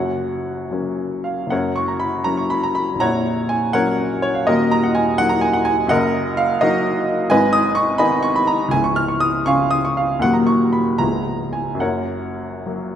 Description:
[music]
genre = classical, romantic character piece for solo piano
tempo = 71-88 BPM (dotted quarters)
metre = 6/8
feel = rubato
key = F# major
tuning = A4 = 439 Hz
[part]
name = warm baby grand piano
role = solo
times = 0.0-13.0 s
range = A#0 to E#6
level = -16 LUFS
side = equal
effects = none
[sound]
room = wet scoring stage reverb, RT60 1.7 s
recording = none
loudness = -16 LUFS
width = side -9 dB against mid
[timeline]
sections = 0.0-1.5 A section; 1.5-13.0 B section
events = none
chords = 0.0 F#; 3.0 F#/A#; 4.5 D#m; 5.9 D#m/F#; 7.3 G#m; 8.7 C#; 10.2 D#m; 11.0 C#7; 11.8 F#

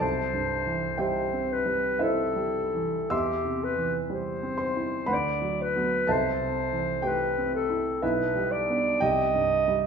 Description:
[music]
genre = classical, romantic duo for clarinet and grand piano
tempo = 61 BPM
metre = 3/4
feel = rubato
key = unclear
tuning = A4 = 440 Hz
[part]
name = clear clarinet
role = melody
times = 0.0-9.9 s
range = G4 to Eb5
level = -27 LUFS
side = equal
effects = none
[part]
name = clear concert grand piano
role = accompaniment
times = 0.0-9.9 s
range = B1 to E6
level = -28 LUFS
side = right 1 dB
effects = none
[sound]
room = moderate scoring stage reverb, RT60 1.4 s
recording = minimal, uncompressed stereo recording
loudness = -24 LUFS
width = side -6 dB against mid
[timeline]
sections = 0.0-9.9 A section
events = none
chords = 0.0 C; 3.1 C/E; 5.1 Bm/D; 6.1 Am/C; 8.0 G/B; 9.0 Cm

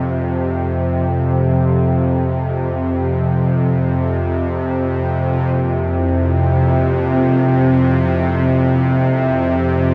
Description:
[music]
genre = ambient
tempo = free time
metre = none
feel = none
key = unclear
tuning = A4 = 440 Hz
[part]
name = bowed-like drone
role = drone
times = 0.0-9.9 s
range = F2 to C3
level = -17 LUFS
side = equal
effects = built-in reverb
[part]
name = bronze singing bowl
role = texture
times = 5.5-9.9 s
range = none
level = barely audible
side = none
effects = none
[part]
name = bronze singing bowl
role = arpeggios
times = 6.0-9.9 s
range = C4 to E4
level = -34 LUFS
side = equal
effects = none
[sound]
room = moderate huge ambient reverb, RT60 9.0 s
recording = in a vast, echoing space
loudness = -17 LUFS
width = mono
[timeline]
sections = 0.0-5.5 A section; 5.5-9.9 B section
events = none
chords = 0.0 F5

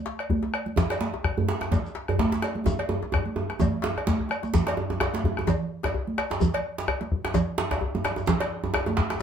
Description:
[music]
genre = west african traditional, West African drum ensemble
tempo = 128 BPM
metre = 4/4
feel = swing 55% on 16ths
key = none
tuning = none
[part]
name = djembe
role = percussion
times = 0.1-9.2 s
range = none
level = -33 LUFS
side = left 4 dB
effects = none
[part]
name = bombo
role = percussion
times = 0.2-9.2 s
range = none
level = -29 LUFS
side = left 2 dB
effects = none
[part]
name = cowbell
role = percussion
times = 0.2-8.9 s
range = none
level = -34 LUFS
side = equal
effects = none
[part]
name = congas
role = percussion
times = 0.3-9.0 s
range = none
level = -29 LUFS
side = right 4 dB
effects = none
[part]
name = djembe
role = percussion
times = 0.8-9.2 s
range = none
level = -29 LUFS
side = right 3 dB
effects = none
[part]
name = shekere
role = percussion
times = 0.8-8.4 s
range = none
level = -35 LUFS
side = left 2 dB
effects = none
[sound]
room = wet studio reverb, RT60 0.5 s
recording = heard from further back in the room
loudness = -24 LUFS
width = side -8 dB against mid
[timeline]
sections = 0.0-4.5 A section; 4.5-9.2 B section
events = drum fill 2.7-4.5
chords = none

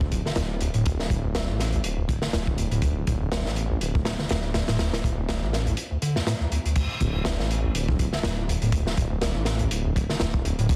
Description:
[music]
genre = breakbeat, breaks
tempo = 122 BPM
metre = 4/4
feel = swing 55% on 16ths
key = unclear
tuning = A4 = 440 Hz
[part]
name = overdriven acid bass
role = riff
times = 0.0-10.8 s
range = D1 to D3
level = -31 LUFS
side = equal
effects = subtle chorus
[part]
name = detuned saw bass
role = bass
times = 0.0-10.8 s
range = D1 to A1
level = -30 LUFS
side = equal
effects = tube saturation
[part]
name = crunchy breakbeat drum kit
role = drums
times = 0.0-10.8 s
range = crash cymbal, hi-hat, kick drum, snare drum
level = -29 LUFS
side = equal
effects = none
[sound]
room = little or no reverb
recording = dense, heavily limited modern master, vinyl crackle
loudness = -26 LUFS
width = mono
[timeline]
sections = 0.0-6.8 A section; 6.8-10.8 B section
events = drop 6.8-10.8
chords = 0.0 D5

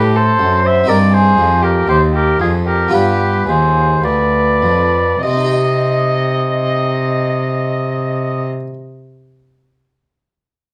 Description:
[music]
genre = classical, baroque-style sonata movement with continuo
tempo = 50-63 BPM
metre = 4/4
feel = straight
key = C minor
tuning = A4 = 440 Hz
[part]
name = clear oboe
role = melody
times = 0.0-8.5 s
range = Ab4 to E5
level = -20 LUFS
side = equal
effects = none
[part]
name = dark violin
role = second line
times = 0.0-8.5 s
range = F4 to Eb5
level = -20 LUFS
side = equal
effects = none
[part]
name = harpsichord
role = accompaniment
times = 0.0-8.7 s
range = D2 to Eb5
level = -21 LUFS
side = equal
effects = none
[part]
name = warm cello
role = bass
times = 0.0-8.5 s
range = D2 to C3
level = -19 LUFS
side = equal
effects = none
[sound]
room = light reverb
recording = worn, warbling old tape, cassette tape, warbly pitch drift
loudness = -14 LUFS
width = mono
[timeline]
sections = 0.0-5.2 A section; 5.2-10.0 B section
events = slowing down 0.0-5.2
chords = 0.0 D7; 0.9 Cm; 2.9 G7; 5.2 Cm

